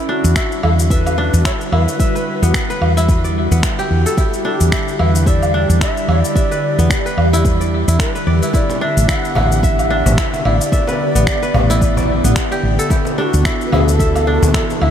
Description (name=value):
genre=organic downtempo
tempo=110 BPM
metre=4/4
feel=swing 57% on 16ths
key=E minor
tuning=A4 = 439 Hz
part: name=ethereal airy pad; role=sustained chords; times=0.0-14.9 s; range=D3 to G4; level=-22 LUFS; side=right 1 dB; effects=ensemble chorus, built-in reverb, sidechain pumping
part: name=kora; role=arpeggios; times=0.0-14.9 s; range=B3 to E5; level=-22 LUFS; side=left 1 dB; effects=tape echo
part: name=mellow Native American-style cedar flute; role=melody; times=0.1-14.9 s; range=F#4 to F#5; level=-22 LUFS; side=equal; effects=tape echo
part: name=woody fretless electric bass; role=bass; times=0.2-14.9 s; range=A1 to E2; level=-14 LUFS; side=equal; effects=sidechain pumping
part: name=electronic shaker, finger snaps and woodblock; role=drums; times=0.2-14.9 s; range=none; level=-23 LUFS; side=equal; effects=none
part: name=electronic kick drum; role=drums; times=0.4-14.7 s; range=none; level=-18 LUFS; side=equal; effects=none
part: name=cajon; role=percussion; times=8.5-14.8 s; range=none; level=-26 LUFS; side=left 1 dB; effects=none
room=moderate huge ambient reverb, RT60 8.4 s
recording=dreamy mix soaked in reverb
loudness=-13 LUFS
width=side -9 dB against mid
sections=0.0-14.9 A section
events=none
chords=0.0 Em9; 8.5 A9sus4; 12.9 D69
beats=0.36 0.90 1.45 | 1.99 2.54 3.08 3.63 | 4.17 4.72 5.27 5.81 | 6.36 6.90 7.45 7.99 | 8.54 9.08 9.63 10.18 | 10.72 11.27 11.81 12.36 | 12.90 13.45 13.99 14.54